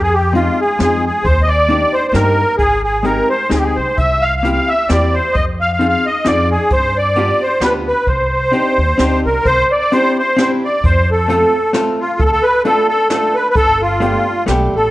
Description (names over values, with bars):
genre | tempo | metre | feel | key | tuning
musette waltz | 132 BPM | 3/4 | swing 55% on 8ths, rubato | C minor, C major from 9.5 s | A4 = 440 Hz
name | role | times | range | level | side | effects
musette accordion | melody | 0.0-14.9 s | F4 to F5 | -14 LUFS | equal | none
upright bass | bass | 0.0-14.9 s | G1 to G2 | -18 LUFS | equal | none
hollow-body jazz guitar | accompaniment | 0.3-14.7 s | Ab3 to A4 | -19 LUFS | left 1 dB | none
jazz brush drum kit | drums | 0.4-14.6 s | hi-hat, kick drum, snare drum | -21 LUFS | equal | none
room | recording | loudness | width
moderate recital hall reverb, RT60 1.5 s | worn, warbling old tape, cassette tape, warbly pitch drift | -12 LUFS | side -17 dB against mid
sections
0.0-9.5 A section; 9.5-14.9 B section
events
none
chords
0.0 Fm7; 1.2 Ebmaj7; 2.6 Abmaj7; 4.0 C7; 5.4 Fm7; 6.7 G7; 8.1 Cmadd9; 9.5 Cadd9; 10.8 F; 12.2 Dm; 13.6 Gadd9